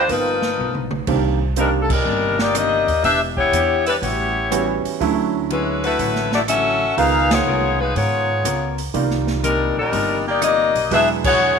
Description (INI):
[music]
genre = jazz, big band swing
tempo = 122 BPM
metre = 4/4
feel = swing 68% on 8ths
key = unclear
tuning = A4 = 440 Hz
[part]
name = edgy saxophone section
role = melody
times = 0.0-11.6 s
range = F3 to F5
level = -18 LUFS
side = left 3 dB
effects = none
[part]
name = upright bass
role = bass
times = 0.0-11.6 s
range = E1 to Ab2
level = -25 LUFS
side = right 1 dB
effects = none
[part]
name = clear upright piano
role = accompaniment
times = 0.1-11.6 s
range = D3 to D5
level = -23 LUFS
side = right 12 dB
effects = none
[part]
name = hollow-body jazz guitar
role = accompaniment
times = 0.1-11.6 s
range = G2 to Bb4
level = -28 LUFS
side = left 11 dB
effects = none
[part]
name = swinging big-band drum kit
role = drums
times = 0.1-11.3 s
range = crash cymbal, hi-hat, kick drum, ride cymbal, rim click, snare drum, toms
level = -27 LUFS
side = right 3 dB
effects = none
[sound]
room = moderate echo chamber reverb, RT60 1.3 s, studio reverb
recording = 1960s-style stereo with parts hard left and right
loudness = -16 LUFS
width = side -6 dB against mid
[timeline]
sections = 0.0-1.1 A section; 1.1-11.6 B section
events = drum fill 0.6-1.1; band accent 1.8, 7.2, 11.2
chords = 0.1 G7alt; 1.1 Cm9; 3.0 Em7; 4.0 A13; 5.0 Dmaj9; 7.0 Db13; 8.9 Cm11; 10.9 E9